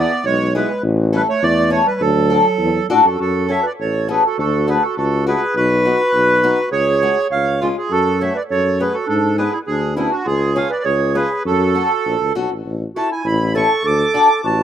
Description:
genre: alpine folk, alpine dance band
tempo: 102 BPM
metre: 2/4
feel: straight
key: D major, F# minor from 3.2 s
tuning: A4 = 440 Hz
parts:
  - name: accordion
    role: melody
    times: 0.0-14.6 s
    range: E4 to D6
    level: -18 LUFS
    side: right 3 dB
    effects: slapback echo
  - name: warm clarinet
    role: second line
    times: 0.0-14.6 s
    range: F#3 to C#5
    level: -23 LUFS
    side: right 3 dB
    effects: slapback echo
  - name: picked old ladder-braced acoustic guitar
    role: accompaniment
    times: 0.0-14.3 s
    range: G#3 to A4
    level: -18 LUFS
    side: left 3 dB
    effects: slapback echo
  - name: warm tuba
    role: bass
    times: 0.0-14.6 s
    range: A1 to A2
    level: -19 LUFS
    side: left 1 dB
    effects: none
room: little or no reverb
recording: recorded outdoors, with no room sound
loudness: -14 LUFS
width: side -10 dB against mid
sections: 0.0-3.2 A section; 3.2-12.7 B section; 12.7-14.6 C section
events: none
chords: 0.0 E; 0.8 A; 2.0 D; 3.2 F#m; 4.4 D; 5.6 B; 6.7 C#sus4; 7.3 C#; 7.9 F#m; 9.1 G#dim; 10.3 C#; 11.5 F#m; 12.7 A; 13.8 D

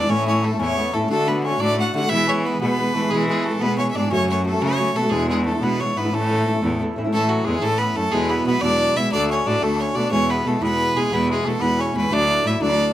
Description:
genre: celtic folk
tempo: 120 BPM (dotted quarters)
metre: 6/8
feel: straight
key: A major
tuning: A4 = 440 Hz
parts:
  - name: clear fiddle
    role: melody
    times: 0.0-12.9 s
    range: F#4 to F#5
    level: -22 LUFS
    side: equal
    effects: none
  - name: mellow cor anglais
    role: second line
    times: 0.0-12.9 s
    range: F#3 to F#4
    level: -28 LUFS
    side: left 4 dB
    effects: none
  - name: fingerpicked steel-string acoustic guitar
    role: accompaniment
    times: 0.0-12.9 s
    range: E2 to G#4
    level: -23 LUFS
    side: right 1 dB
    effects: none
  - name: rich cello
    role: bass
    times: 0.0-12.9 s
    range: D2 to E3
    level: -24 LUFS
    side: equal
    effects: none
room: moderate small room reverb, RT60 0.5 s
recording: none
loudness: -18 LUFS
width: side -12 dB against mid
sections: 0.0-7.1 A section; 7.1-12.9 B section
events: none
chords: 0.1 A; 1.1 D; 2.1 E; 4.1 F#m; 5.1 E7; 6.1 A; 8.1 Eadd9; 9.1 D; 10.1 E; 12.1 Dadd9

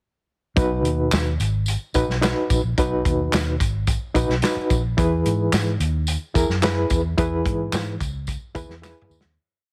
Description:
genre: uptempo 1960s-style soul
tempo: 109 BPM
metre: 4/4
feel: straight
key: B major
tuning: A4 = 440 Hz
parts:
  - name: overdriven reed electric piano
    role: accompaniment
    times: 0.6-9.2 s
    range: B2 to B4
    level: -25 LUFS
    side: equal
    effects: fast tremolo
  - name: vintage muted fingered electric bass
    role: bass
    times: 0.6-9.4 s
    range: G#1 to G#2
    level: -26 LUFS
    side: equal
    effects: none
  - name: warm soul drum kit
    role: drums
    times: 0.6-9.3 s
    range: hi-hat, kick drum, snare drum, toms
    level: -27 LUFS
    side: equal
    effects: none
  - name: tambourine and handclaps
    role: percussion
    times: 0.6-9.2 s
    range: none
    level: -32 LUFS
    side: equal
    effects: none
room: small room ambience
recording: heavily compressed radio sound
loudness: -22 LUFS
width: mono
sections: 0.6-9.4 verse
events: fade-out 7.2-9.4; drum fill 8.8-9.4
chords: 0.6 B; 5.0 E

